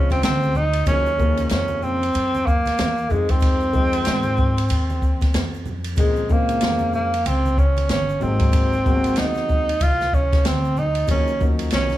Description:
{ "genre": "hip hop, jazz-hop", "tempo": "94 BPM", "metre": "4/4", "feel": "swing 61% on 16ths", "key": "Eb dorian", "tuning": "A4 = 440 Hz", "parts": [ { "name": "breathy tenor saxophone", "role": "melody", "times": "0.0-12.0 s", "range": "Ab3 to F4", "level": "-22 LUFS", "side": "right 1 dB", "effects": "none" }, { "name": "dark baby grand piano", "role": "accompaniment", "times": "0.0-12.0 s", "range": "Cb3 to Gb4", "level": "-28 LUFS", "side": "left 5 dB", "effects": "none" }, { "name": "upright bass", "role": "bass", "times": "0.0-12.0 s", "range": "G1 to Ab2", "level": "-24 LUFS", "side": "equal", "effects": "none" }, { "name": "open jazz drum kit", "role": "drums", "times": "0.1-12.0 s", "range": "hi-hat, kick drum, ride cymbal, snare drum", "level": "-22 LUFS", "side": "equal", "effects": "none" }, { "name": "congas and egg shaker", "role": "percussion", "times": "0.1-12.0 s", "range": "none", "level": "-36 LUFS", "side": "right 3 dB", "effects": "none" } ], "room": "small room ambience", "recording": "none", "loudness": "-17 LUFS", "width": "side -14 dB against mid", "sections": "0.9-12.0 A section", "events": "none", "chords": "0.0 Dbmaj9; 0.9 Ebm9; 3.1 Fm7; 6.0 Bbm7; 8.2 Ab7; 11.1 Ebm9" }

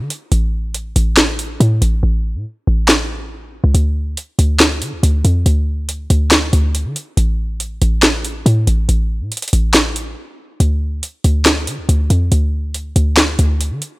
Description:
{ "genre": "hip hop, trap", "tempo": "140 BPM", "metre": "4/4", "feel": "half-time", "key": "D minor", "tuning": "A4 = 440 Hz", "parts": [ { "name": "short 808-style bass", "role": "bass", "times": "0.0-13.8 s", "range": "A1 to D3", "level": "-15 LUFS", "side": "equal", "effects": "none" }, { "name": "trap drum kit", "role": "drums", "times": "0.1-13.9 s", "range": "handclaps, hi-hat, snare drum", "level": "-15 LUFS", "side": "equal", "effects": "none" } ], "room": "little or no reverb", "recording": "none", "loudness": "-13 LUFS", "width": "side -21 dB against mid", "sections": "0.0-10.6 A section; 10.6-14.0 B section", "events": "hi-hats muted 2.0-3.7; break 10.2-10.6", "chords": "none" }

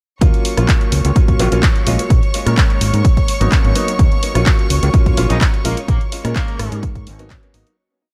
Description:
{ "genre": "filtered disco house", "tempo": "127 BPM", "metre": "4/4", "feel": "straight", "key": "Eb minor", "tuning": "A4 = 440 Hz", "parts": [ { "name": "clear concert grand piano", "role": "accompaniment", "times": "0.2-7.6 s", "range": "Gb3 to Bb4", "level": "-24 LUFS", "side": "equal", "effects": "phaser, vintage 12-bit sampler grit, sidechain pumping, analog delay" }, { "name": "rich chamber violin section", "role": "sustained chords", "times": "0.2-7.8 s", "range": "Db5 to Db6", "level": "-28 LUFS", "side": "equal", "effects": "sidechain pumping" }, { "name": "fingered electric bass", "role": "bass", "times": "0.2-7.6 s", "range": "Ab1 to Bb2", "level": "-20 LUFS", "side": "equal", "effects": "sidechain pumping" }, { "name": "electronic kick drum", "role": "drums", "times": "0.2-7.4 s", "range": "none", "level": "-16 LUFS", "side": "equal", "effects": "none" }, { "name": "punchy analog drum machine", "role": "drums", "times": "0.2-7.8 s", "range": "handclaps, hi-hat, rim click", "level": "-25 LUFS", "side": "equal", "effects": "sidechain pumping on hats" }, { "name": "clear horn section", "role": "melody", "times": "5.3-6.9 s", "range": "Bb3 to Eb4", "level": "-30 LUFS", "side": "equal", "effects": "sidechain pumping, analog delay" } ], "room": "small room ambience", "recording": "echo-heavy mix", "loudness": "-15 LUFS", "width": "mono", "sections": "0.2-7.8 drop", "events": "drop 0.2-7.8; fade-out 5.3-7.8", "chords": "0.2 Ebm7 (rootless); 1.9 Bbm7; 3.0 Abm7; 4.0 Ebm7 (rootless); 5.6 Bbm7; 6.8 Abm7" }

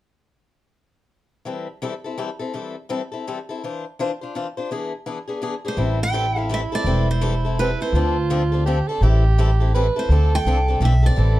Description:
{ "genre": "acoustic string swing (jazz manouche)", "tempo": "167 BPM", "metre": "3/4", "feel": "swing 61% on 8ths", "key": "A minor", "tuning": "A4 = 438 Hz", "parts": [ { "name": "picked swing-style acoustic guitar", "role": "accompaniment", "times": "1.5-11.4 s", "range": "D3 to C5", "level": "-26 LUFS", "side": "left 4 dB", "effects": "none" }, { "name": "picked steel-string acoustic guitar", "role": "melody", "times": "5.7-11.4 s", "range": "B4 to G5", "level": "-26 LUFS", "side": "right 2 dB", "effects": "none" }, { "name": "clear soprano saxophone", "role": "second line", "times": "5.8-11.4 s", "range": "E4 to B4", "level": "-26 LUFS", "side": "right 6 dB", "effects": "none" }, { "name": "upright bass", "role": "bass", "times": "5.8-11.4 s", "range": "E1 to D2", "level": "-18 LUFS", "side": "equal", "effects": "none" } ], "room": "light reverb", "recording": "dark, warm production", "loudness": "-19 LUFS", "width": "side -16 dB against mid", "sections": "1.5-5.8 A section; 5.8-11.4 B section", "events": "none", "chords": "1.5 Am7/E; 3.6 Dm9/E; 4.7 E7; 5.8 Am7; 7.9 Dm7; 9.0 Am7; 10.1 Dm7" }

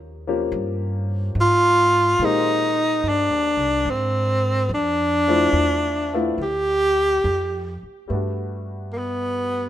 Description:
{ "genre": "jazz ballad", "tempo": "72 BPM", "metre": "4/4", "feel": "swing 69% on 8ths", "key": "unclear", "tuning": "A4 = 440 Hz", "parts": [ { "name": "upright bass", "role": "bass", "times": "0.0-9.7 s", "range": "C2 to Bb2", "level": "-27 LUFS", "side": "equal", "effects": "none" }, { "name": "warm upright piano", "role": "accompaniment", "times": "0.3-9.7 s", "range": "Eb3 to G4", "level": "-27 LUFS", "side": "left 4 dB", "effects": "none" }, { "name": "breathy tenor saxophone", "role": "melody", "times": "1.4-9.7 s", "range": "Bb3 to G4", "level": "-19 LUFS", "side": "equal", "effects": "none" } ], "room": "light reverb", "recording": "minimal, uncompressed stereo recording", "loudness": "-18 LUFS", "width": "side -12 dB against mid", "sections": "0.0-8.1 A section; 8.1-9.7 B section", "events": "none", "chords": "0.0 Eb13; 1.4 Abmaj9; 4.7 Dm9; 6.4 G5; 8.1 Gmaj9" }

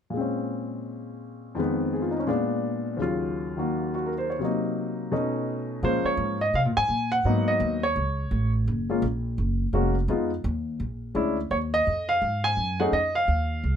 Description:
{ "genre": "jazz piano trio", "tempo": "169 BPM", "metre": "4/4", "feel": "swing 62% on 8ths", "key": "Bb minor", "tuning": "A4 = 440 Hz", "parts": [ { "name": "warm grand piano", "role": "melody", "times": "0.1-13.8 s", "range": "Eb2 to Ab5", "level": "-25 LUFS", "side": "left 1 dB", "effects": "none" }, { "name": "upright bass", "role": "bass", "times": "5.8-13.8 s", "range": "F1 to C3", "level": "-27 LUFS", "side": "right 1 dB", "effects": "none" } ], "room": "light reverb", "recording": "none", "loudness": "-24 LUFS", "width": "side -8 dB against mid", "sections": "0.1-5.8 A section; 5.8-13.8 B section", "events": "none", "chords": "0.1 Bbm9; 1.6 Fm7b5; 2.3 Bb7b9; 3.0 Ebm9; 4.4 Cm7b5; 5.1 B9; 5.8 Bbm7; 7.3 Abm7; 8.0 A; 8.7 Gbmaj7; 10.1 Fm7b5; 10.8 Bb7#9; 11.5 Ebmadd9; 12.9 F7(#5, no3)" }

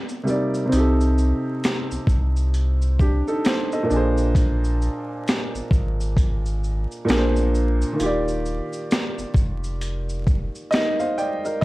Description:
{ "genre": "lo-fi hip hop", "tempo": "66 BPM", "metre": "4/4", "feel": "swing 61% on 16ths", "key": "Eb major", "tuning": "A4 = 440 Hz", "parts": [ { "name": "clear upright piano", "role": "accompaniment", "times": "0.0-11.6 s", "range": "Bb2 to G5", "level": "-24 LUFS", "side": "right 1 dB", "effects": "none" }, { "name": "boom bap sampler-style drum kit", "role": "drums", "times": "0.1-11.6 s", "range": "hi-hat, kick drum, shaker, snare drum", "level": "-22 LUFS", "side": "equal", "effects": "vintage 12-bit sampler grit" }, { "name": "warm sub bass", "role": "bass", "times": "0.7-10.5 s", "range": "Eb1 to C2", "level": "-22 LUFS", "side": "equal", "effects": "none" } ], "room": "light reverb", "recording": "vinyl crackle", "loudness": "-19 LUFS", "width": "side -19 dB against mid", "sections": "0.0-11.6 A section", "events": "none", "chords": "0.0 Cm9; 0.7 Cm69; 3.9 Bb9; 8.0 Ebmaj9" }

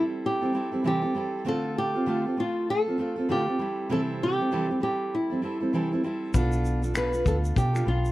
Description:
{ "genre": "acoustic pop", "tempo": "98 BPM", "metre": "4/4", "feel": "swing 60% on 16ths", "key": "unclear", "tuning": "A4 = 439 Hz", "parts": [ { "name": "nylon-string guitar", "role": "melody", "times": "0.0-8.1 s", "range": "E4 to B4", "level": "-28 LUFS", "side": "equal", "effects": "none" }, { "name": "fingerpicked steel-string acoustic guitar", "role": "accompaniment", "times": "0.0-8.1 s", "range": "C3 to A4", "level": "-28 LUFS", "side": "right 1 dB", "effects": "none" }, { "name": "vintage muted fingered electric bass", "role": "bass", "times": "6.3-8.1 s", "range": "B1 to B2", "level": "-26 LUFS", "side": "equal", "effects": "none" }, { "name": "loose indie drum kit", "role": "drums", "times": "6.3-8.1 s", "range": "finger snaps, kick drum, shaker", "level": "-28 LUFS", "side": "left 2 dB", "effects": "none" } ], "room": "little or no reverb", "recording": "dark, warm production", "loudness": "-24 LUFS", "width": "side -16 dB against mid", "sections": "0.0-8.1 A section", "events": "none", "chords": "0.0 C6; 1.5 Dm7; 3.6 C6; 6.3 Bm7b5" }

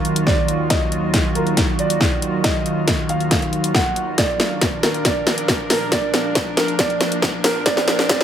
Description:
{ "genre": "heavy wobble dubstep", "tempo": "138 BPM", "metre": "4/4", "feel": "half-time", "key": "Eb harmonic minor", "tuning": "A4 = 440 Hz", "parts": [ { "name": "dark grand piano", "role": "melody", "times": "0.0-8.2 s", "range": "Bb4 to Gb5", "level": "-24 LUFS", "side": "right 1 dB", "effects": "dub echo" }, { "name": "evolving wavetable pad", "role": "sustained chords", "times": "0.0-8.2 s", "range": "Eb2 to Bb4", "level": "-24 LUFS", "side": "right 2 dB", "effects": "chorus, built-in reverb, sidechain pumping" }, { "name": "dubstep drum kit", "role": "drums", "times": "0.0-8.2 s", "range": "hi-hat, snare drum", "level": "-19 LUFS", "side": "equal", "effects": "high-pass filter on hats, high-pass filter on snare, high-pass filter on room" }, { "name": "airy breathy pad", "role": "texture", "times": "0.0-8.2 s", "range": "Gb3 to F5", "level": "-26 LUFS", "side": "equal", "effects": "chorus, sidechain pumping" }, { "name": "electronic kick drum", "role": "drums", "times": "0.3-8.2 s", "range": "none", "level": "-23 LUFS", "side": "equal", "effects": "none" }, { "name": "riser", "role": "sound effects", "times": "6.1-8.2 s", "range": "none", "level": "-34 LUFS", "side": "right 1 dB", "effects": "none" } ], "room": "moderate digital room reverb, RT60 1.1 s, digital ambience", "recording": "high-pass filter", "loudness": "-16 LUFS", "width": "side -9 dB against mid", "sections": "0.0-8.2 A section", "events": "build-up 0.0-8.2; drum fill 0.0-8.2; filter sweep 0.0-8.2", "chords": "0.0 Ebmadd9; 4.2 Bb" }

